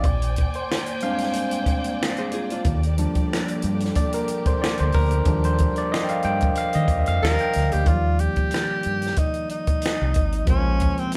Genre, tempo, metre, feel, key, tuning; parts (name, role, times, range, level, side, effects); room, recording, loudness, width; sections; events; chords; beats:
R&B, neo-soul; 92 BPM; 4/4; swing 55% on 16ths; Eb major; A4 = 440 Hz
overdriven tine electric piano; accompaniment; 0.0-11.2 s; C3 to G5; -28 LUFS; equal
warm studio string section; sustained chords; 0.0-7.8 s; D3 to Ab5; -34 LUFS; equal
deep dub fingered electric bass; bass; 0.0-10.9 s; Ab1 to Eb3; -25 LUFS; equal
compact cocktail drum kit; drums; 0.0-11.2 s; finger snaps, hi-hat, kick drum, snare drum; -27 LUFS; equal
archtop guitar, miked and amplified; second line; 2.2-2.8 s; D4 to C5; -33 LUFS; equal
breathy tenor saxophone; melody; 7.2-11.2 s; C4 to Bb4; -28 LUFS; equal
moderate studio reverb, RT60 0.8 s; band playing live in one room; -22 LUFS; mono
0.0-7.9 A section; 7.9-11.2 B section
tine electric piano solo 0.0-7.9
0.0 Bb13; 2.6 Ebmaj7; 10.5 Bbm7
| 0.04 0.69 1.34 2.00 | 2.65 3.30 3.95 4.61 | 5.26 5.91 6.56 7.21 | 7.87 8.52 9.17 9.82 | 10.47 11.13